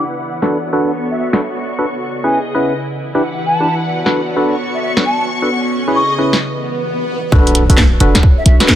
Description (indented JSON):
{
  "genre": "UK garage, two-step garage",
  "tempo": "132 BPM",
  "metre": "4/4",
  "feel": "swing 65% on 16ths",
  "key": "B dorian",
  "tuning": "A4 = 438 Hz",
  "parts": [
    { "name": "baroque flute", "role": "melody", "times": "0.0-8.6 s", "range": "E5 to C#6", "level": "-21 LUFS", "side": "left 1 dB", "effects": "dub echo" },
    { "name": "ethereal airy pad", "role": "sustained chords", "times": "0.0-8.8 s", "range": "B3 to F#5", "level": "-23 LUFS", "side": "equal", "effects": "ensemble chorus, built-in reverb, sidechain pumping" },
    { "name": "percussive organ stab", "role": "stabs", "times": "0.0-8.8 s", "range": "C#4 to B4", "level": "-18 LUFS", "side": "equal", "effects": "chorus, dub echo" },
    { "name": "rich symphonic string section", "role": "texture", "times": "0.0-6.4 s", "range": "B3 to C#6", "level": "-22 LUFS", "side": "left 1 dB", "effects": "sidechain pumping" },
    { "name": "garage drum kit", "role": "drums", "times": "0.4-8.8 s", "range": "hi-hat, snare drum", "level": "-14 LUFS", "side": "equal", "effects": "none" },
    { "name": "swell and impact", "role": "sound effects", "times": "6.6-8.8 s", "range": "none", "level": "-21 LUFS", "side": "equal", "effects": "none" },
    { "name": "short 808-style bass", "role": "bass", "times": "7.3-8.6 s", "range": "F#1 to B1", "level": "-11 LUFS", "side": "equal", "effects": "none" },
    { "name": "electronic kick drum", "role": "drums", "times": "7.3-8.8 s", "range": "none", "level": "-11 LUFS", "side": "equal", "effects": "none" }
  ],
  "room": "light reverb",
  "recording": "low-pass filter",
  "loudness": "-12 LUFS",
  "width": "side -11 dB against mid",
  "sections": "0.0-7.3 A section; 7.3-8.8 B section",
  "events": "filter sweep on synth stab 0.0-7.3; filter sweep 0.0-7.3; break 6.4-7.3; swell 6.6-7.3; drop 7.3-8.8; impact 7.3-8.8",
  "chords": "0.0 Bm7; 1.9 C#m7; 2.8 Em7; 3.7 Bm7; 5.5 C#m7; 6.4 Em7; 7.3 Bm7"
}